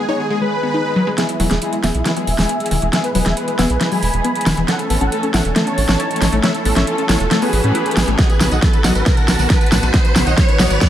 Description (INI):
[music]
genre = uplifting trance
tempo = 137 BPM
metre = 4/4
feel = straight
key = E major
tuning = A4 = 440 Hz
[part]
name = dense compressed supersaw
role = melody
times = 0.0-10.9 s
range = E4 to B5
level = -21 LUFS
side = equal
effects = sidechain pumping, low-pass filter, dub echo
[part]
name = wide unison pluck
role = arpeggios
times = 0.0-10.9 s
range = A2 to E4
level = -22 LUFS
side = left 3 dB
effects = sidechain pumping, dub echo
[part]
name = dark studio string section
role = sustained chords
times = 0.1-10.9 s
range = D#3 to A4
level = -24 LUFS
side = left 1 dB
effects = sidechain pumping
[part]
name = big-room dance drum kit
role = drums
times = 1.2-10.9 s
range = hi-hat, snare drum, tambourine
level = -19 LUFS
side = right 1 dB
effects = overdrive
[part]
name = riser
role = sound effects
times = 4.3-10.9 s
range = none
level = -26 LUFS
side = equal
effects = none
[part]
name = tight sequencer bass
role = bass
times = 1.4-10.8 s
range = E1 to A2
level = -19 LUFS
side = equal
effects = sidechain pumping
[part]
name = electronic kick drum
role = drums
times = 8.2-10.9 s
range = none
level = -14 LUFS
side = equal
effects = overdrive
[sound]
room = light reverb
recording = none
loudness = -14 LUFS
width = side -11 dB against mid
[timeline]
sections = 0.0-1.2 A section; 1.2-10.9 B section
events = build-up 1.2-10.9; drum fill 1.2-10.9; filter sweep on supersaw synth 1.2-10.9; filter sweep on synth pluck 1.2-10.9; riser 4.3-10.9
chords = 0.0 G#m; 1.2 E; 4.7 A; 8.2 B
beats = 0.30 0.74 | 1.18 1.62 2.06 2.49 | 2.93 3.37 3.81 4.25 | 4.68 5.12 5.56 6.00 | 6.43 6.87 7.31 7.75 | 8.19 8.62 9.06 9.50 | 9.94 10.38 10.81